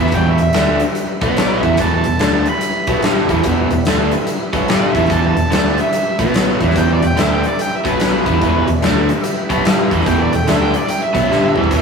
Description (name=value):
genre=blues rock power trio and southern rock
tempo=145 BPM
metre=4/4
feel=swing 63% on 8ths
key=E minor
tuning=A4 = 440 Hz
part: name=octave-fuzz lead guitar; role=melody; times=0.0-11.8 s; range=B4 to B5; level=-20 LUFS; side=right 1 dB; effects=distortion
part: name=overdriven tonewheel organ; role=sustained chords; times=0.0-11.8 s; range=B3 to F#5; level=-28 LUFS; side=right 2 dB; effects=none
part: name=overdriven electric guitar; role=riff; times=0.0-11.8 s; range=E2 to E4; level=-16 LUFS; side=equal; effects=spring reverb
part: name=vintage muted fingered electric bass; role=bass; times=0.0-11.8 s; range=E1 to E2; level=-22 LUFS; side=equal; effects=none
part: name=huge arena drum kit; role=drums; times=0.1-11.8 s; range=hi-hat, kick drum, snare drum, toms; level=-18 LUFS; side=left 1 dB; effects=none
room=moderate stone room reverb, RT60 1.6 s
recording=rough rehearsal-room recording, warm saturation, small room ambience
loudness=-13 LUFS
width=side -5 dB against mid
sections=0.0-11.8 A section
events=drum fill 11.3-11.7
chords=0.0 Em; 1.2 B5; 1.6 Em; 6.1 B5; 6.5 Em; 7.8 B5; 8.2 Em